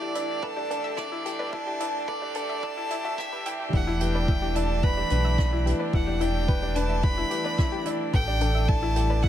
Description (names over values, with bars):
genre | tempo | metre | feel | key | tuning
piano and strings electronica | 109 BPM | 4/4 | straight | E minor | A4 = 440 Hz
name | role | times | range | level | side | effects
clear violin | melody | 0.0-9.3 s | D5 to B5 | -31 LUFS | left 1 dB | none
rich string quartet | sustained chords | 0.0-9.3 s | E3 to G4 | -34 LUFS | right 1 dB | sidechain pumping
analog pluck | arpeggios | 0.0-9.3 s | E3 to E5 | -36 LUFS | left 3 dB | chorus, sidechain pumping, ping-pong delay
clear grand piano | riff | 0.0-9.3 s | D4 to G5 | -30 LUFS | equal | none
jazz brush drum kit | drums | 0.2-9.1 s | hi-hat, rim click | -39 LUFS | right 5 dB | none
electronic kick drum | drums | 0.4-9.3 s | none | -24 LUFS | equal | none
round analog bass | bass | 3.7-9.3 s | E1 to B1 | -26 LUFS | equal | sidechain pumping
room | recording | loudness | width
light reverb | high-pass filter | -24 LUFS | side -11 dB against mid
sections
0.0-3.7 A section; 3.7-9.3 B section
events
build-up 0.0-3.7; drop 3.7-9.3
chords
0.0 A7sus4; 3.7 Em7